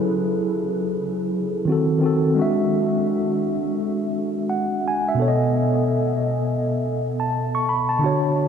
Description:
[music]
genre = hip hop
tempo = 85 BPM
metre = 4/4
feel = swing 60% on 16ths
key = unclear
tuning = A4 = 440 Hz
[part]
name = mellow tine electric piano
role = solo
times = 0.0-8.5 s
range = B2 to C#6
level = -19 LUFS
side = equal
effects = medium stereo tremolo, analog delay
[sound]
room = wet huge ambient reverb, RT60 7.6 s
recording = dreamy mix soaked in reverb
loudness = -19 LUFS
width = side -7 dB against mid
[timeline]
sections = 0.0-8.5 A section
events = none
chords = 0.0 F#m9; 1.7 D#dim7; 2.4 E7/G#; 5.2 B7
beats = 0.27 0.97 1.68 | 2.39 3.09 3.80 4.50 | 5.21 5.92 6.62 7.33 | 8.03

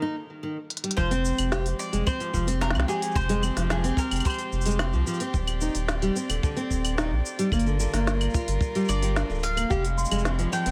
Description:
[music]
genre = folktronica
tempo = 110 BPM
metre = 4/4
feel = straight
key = F dorian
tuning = A4 = 436 Hz
[part]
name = fingerpicked steel-string acoustic guitar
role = arpeggios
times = 0.0-10.7 s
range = D3 to G4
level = -32 LUFS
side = equal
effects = delay
[part]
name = organic electronic drum kit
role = drums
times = 0.7-10.7 s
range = cabasa, claves, hi-hat, snare drum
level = -34 LUFS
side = equal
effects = none
[part]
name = mandolin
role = melody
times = 1.0-5.0, 8.9-10.7 s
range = Ab4 to G5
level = -34 LUFS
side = equal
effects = delay
[part]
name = rich string quartet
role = sustained chords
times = 1.0-10.7 s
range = F3 to D5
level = -37 LUFS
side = equal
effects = none
[part]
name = round analog bass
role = bass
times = 1.0-10.7 s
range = D1 to C2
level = -29 LUFS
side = equal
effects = none
[part]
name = kick drum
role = drums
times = 1.0-9.8 s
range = none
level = -29 LUFS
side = equal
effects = none
[part]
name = toy piano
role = second line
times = 9.7-10.2 s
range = F5 to C6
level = -38 LUFS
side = equal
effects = delay
[sound]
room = light reverb, studio reverb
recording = none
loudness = -26 LUFS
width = mono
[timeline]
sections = 1.0-10.7 A section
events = break 0.0-1.0; drum fill 0.7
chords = 0.0 Eb; 1.0 Fmadd9; 5.3 Cmadd9/Eb; 7.5 Gm7; 9.7 Fmadd9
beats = 0.43 | 0.98 1.52 2.07 2.61 | 3.16 3.71 4.25 4.80 | 5.34 5.89 6.43 6.98 | 7.52 8.07 8.61 9.16 | 9.71 10.25

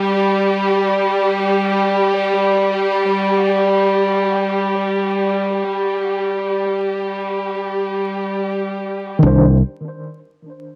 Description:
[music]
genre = trip hop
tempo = free time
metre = none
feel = none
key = unclear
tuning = A4 = 440 Hz
[part]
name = dark studio violin section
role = sustained chords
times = 0.0-9.2 s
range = G3 to G4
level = -18 LUFS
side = equal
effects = none
[part]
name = mellow tine electric piano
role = accompaniment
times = 9.2-9.6 s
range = Eb3 to C5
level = -18 LUFS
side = equal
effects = tremolo, tape echo
[part]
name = fingered electric bass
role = bass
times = 9.2-9.6 s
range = C2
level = -15 LUFS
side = equal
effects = none
[sound]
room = light reverb, small room ambience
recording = dry, gritty hardware recording, vinyl crackle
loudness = -18 LUFS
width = mono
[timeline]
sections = 0.0-9.2 A section; 9.2-10.8 B section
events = none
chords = 0.0 N.C.; 9.2 Cmadd9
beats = free time

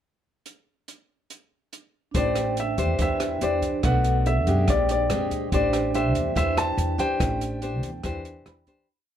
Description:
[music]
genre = bossa nova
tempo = 143 BPM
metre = 4/4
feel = straight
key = A minor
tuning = A4 = 440 Hz
[part]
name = open jazz drum kit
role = drums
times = 0.5-8.8 s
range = hi-hat, kick drum, rim click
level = -30 LUFS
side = right 1 dB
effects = none
[part]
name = nylon-string guitar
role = accompaniment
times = 2.1-8.9 s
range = Bb2 to C5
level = -28 LUFS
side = left 3 dB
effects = none
[part]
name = vibraphone with medium mallets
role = accompaniment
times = 2.1-8.9 s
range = D4 to B5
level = -30 LUFS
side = right 7 dB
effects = none
[part]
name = upright bass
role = bass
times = 2.1-8.7 s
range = A1 to F#2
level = -26 LUFS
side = equal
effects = none
[part]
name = warm baby grand piano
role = melody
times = 2.2-8.4 s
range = D5 to A5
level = -27 LUFS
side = left 2 dB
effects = plate reverb
[sound]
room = light reverb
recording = dark, warm production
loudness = -21 LUFS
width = side -10 dB against mid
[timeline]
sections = 0.5-2.1 pickup bar; 2.1-8.9 A section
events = fade-out 7.2-8.9; vibraphone fill 8.2-8.9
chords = 0.5 N.C.; 2.1 Am7; 3.8 Bm7; 4.7 Bb13; 5.5 Am11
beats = | 0.46 0.88 1.30 1.72 | 2.15 2.57 2.99 3.41 | 3.83 4.25 4.67 5.09 | 5.51 5.93 6.36 6.78 | 7.20 7.62 8.04 8.46

